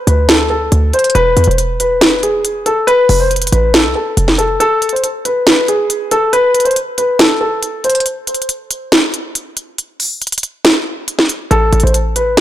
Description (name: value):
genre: hip hop, trap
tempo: 139 BPM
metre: 4/4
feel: half-time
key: unclear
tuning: A4 = 440 Hz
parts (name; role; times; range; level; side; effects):
- dark concert grand piano; melody; 0.1-8.0, 11.5-12.4 s; G#4 to C5; -13 LUFS; left 1 dB; low-pass filter, digital delay
- short 808-style bass; bass; 0.1-4.6, 11.5-12.4 s; E1 to E2; -14 LUFS; equal; none
- trap drum kit; drums; 0.1-12.4 s; hi-hat, snare drum; -13 LUFS; equal; none
room: light reverb, digital ambience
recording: blown-out, overdriven recording, overdrive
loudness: -11 LUFS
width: side -12 dB against mid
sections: 0.0-12.4 A section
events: break 4.6-11.5; kick muted 4.6-5.5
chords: 0.0 D5; 1.2 E; 2.9 F; 4.6 N.C.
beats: 0.29 0.72 | 1.15 1.58 2.01 2.45 | 2.88 3.31 3.74 4.17 | 4.60 5.04 5.47 5.90 | 6.33 6.76 7.19 7.62 | 8.06 8.49 8.92 9.35 | 9.78 10.21 10.65 11.08 | 11.51 11.94 12.37